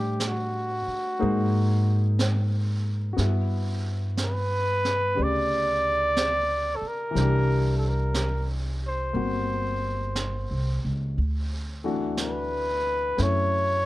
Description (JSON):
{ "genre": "jazz ballad", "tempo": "60 BPM", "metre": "4/4", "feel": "swing 66% on 8ths", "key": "D major", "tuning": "A4 = 440 Hz", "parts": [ { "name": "breathy trumpet", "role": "melody", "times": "0.0-13.9 s", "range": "F#4 to D5", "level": "-26 LUFS", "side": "equal", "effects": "none" }, { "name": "clear baby grand piano", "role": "accompaniment", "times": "0.0-13.9 s", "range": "C#3 to D5", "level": "-32 LUFS", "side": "left 3 dB", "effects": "none" }, { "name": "upright bass", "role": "bass", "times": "0.0-13.9 s", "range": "G1 to A2", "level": "-26 LUFS", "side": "equal", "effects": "none" }, { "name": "jazz brush drum kit", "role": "drums", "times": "0.2-13.9 s", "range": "brushed snare drum, hi-hat, snare drum", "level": "-34 LUFS", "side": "right 3 dB", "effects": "none" } ], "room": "little or no reverb", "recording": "dark, warm production", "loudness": "-23 LUFS", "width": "side -17 dB against mid", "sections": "0.0-13.9 A section", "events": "none", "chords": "0.0 Am7; 1.2 G#9; 3.2 G6; 7.2 C9; 11.2 D69", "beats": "0.20 1.20 2.20 | 3.19 4.19 5.18 6.17 | 7.17 8.16 9.16 10.16 | 11.17 12.18 13.18" }